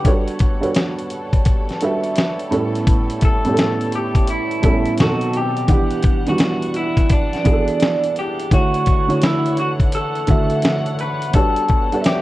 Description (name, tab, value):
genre	lo-fi hip hop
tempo	85 BPM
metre	4/4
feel	swing 66% on 16ths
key	D major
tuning	A4 = 439 Hz
part	electric guitar through a small old amp	melody	0.0-12.2 s	D4 to B4	-22 LUFS	equal	phaser, low-pass filter
part	dark upright piano	accompaniment	0.0-12.2 s	A2 to F#5	-20 LUFS	right 2 dB	cassette tape, low-pass filter
part	rich studio string section	sustained chords	0.0-12.2 s	B2 to F#5	-30 LUFS	left 1 dB	low-pass filter
part	dusty soul sampler-style drum kit	drums	0.0-12.2 s	hi-hat, kick drum, snare drum	-17 LUFS	left 1 dB	none
room	moderate studio reverb, RT60 0.5 s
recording	worn, warbling old tape, cassette tape, warbly pitch drift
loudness	-15 LUFS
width	side -16 dB against mid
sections	0.0-12.2 A section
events	break 0.0-2.9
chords	0.0 Gmaj9#11; 2.5 A9; 5.0 B7b9; 5.7 Em9; 8.5 Dmaj9; 11.3 Gmaj9#11